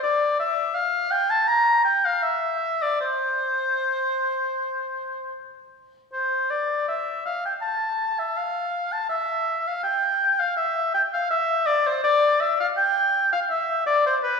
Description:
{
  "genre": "classical, baroque-style fantasia for unaccompanied oboe",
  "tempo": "76-84 BPM",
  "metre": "4/4",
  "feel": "rubato",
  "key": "unclear",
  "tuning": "A4 = 442 Hz",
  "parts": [
    { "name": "clear oboe", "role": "solo", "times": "0.0-14.4 s", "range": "B4 to Bb5", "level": "-21 LUFS", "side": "left 1 dB", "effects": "none" }
  ],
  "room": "wet scoring stage reverb, RT60 2.0 s",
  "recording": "heard from further back in the room",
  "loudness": "-21 LUFS",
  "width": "side -5 dB against mid",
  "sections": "0.0-14.4 A section",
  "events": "none",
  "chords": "none",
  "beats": "| 0.03 0.75 1.48 2.23 | 3.01 3.79 4.58 5.36 | 6.14 6.89 7.62 8.37 | 9.11 9.85 10.58 11.30 | 12.03 12.76 13.49 14.24"
}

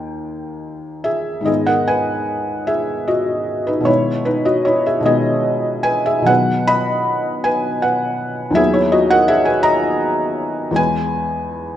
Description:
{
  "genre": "classical, romantic nocturne for solo piano",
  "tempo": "45-56 BPM (dotted quarters)",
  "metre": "12/8",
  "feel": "rubato",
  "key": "G# minor",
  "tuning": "A4 = 440 Hz",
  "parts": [
    { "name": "felt-muted upright piano", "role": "solo", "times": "0.0-11.8 s", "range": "D#2 to B5", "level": "-15 LUFS", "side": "equal", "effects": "none" }
  ],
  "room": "wet recital hall reverb, RT60 1.5 s",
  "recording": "none",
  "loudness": "-15 LUFS",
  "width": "side -11 dB against mid",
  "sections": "0.0-11.8 A section",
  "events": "none",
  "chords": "0.0 D#; 1.5 G#m; 3.9 G#m/B; 6.3 B; 8.6 B/D#; 10.8 E",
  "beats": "0.21 | 1.48 2.69 3.88 5.06 | 6.29 7.47 8.59 9.67 | 10.78"
}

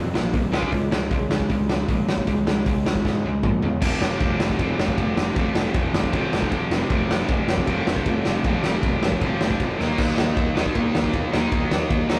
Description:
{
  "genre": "punk rock",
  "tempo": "156 BPM",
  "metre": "4/4",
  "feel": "straight",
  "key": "F minor",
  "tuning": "A4 = 440 Hz",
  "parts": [
    { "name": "distorted electric guitar", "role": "riff", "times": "0.0-12.2 s", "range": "F2 to Eb4", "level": "-29 LUFS", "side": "equal", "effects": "distortion" },
    { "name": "sludgy distorted guitar", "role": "riff", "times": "0.0-12.2 s", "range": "F2 to Eb4", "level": "-32 LUFS", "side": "equal", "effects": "overdrive" },
    { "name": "fuzz picked electric bass", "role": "bass", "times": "0.0-12.2 s", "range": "F1 to Ab2", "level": "-29 LUFS", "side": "equal", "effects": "overdrive" },
    { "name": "raw garage drum kit", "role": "drums", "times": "0.2-12.2 s", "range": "crash cymbal, hi-hat, kick drum, ride cymbal, snare drum, toms", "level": "-25 LUFS", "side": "equal", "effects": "none" }
  ],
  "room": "moderate studio reverb, RT60 0.5 s",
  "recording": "rough rehearsal-room recording",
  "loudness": "-22 LUFS",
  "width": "mono",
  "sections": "0.0-3.8 A section; 3.8-12.2 B section",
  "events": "drum fill 3.0-3.8, 9.8",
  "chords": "0.0 Bb5; 0.5 Db5; 3.8 F5; 9.8 Eb5",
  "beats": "0.34 | 0.72 1.11 1.50 1.89 | 2.27 2.66 3.05 3.44 | 3.82 4.21 4.60 4.98 | 5.37 5.75 6.14 6.52 | 6.91 7.29 7.68 8.06 | 8.45 8.83 9.22 9.60 | 9.99 10.37 10.76 11.14 | 11.53 11.91"
}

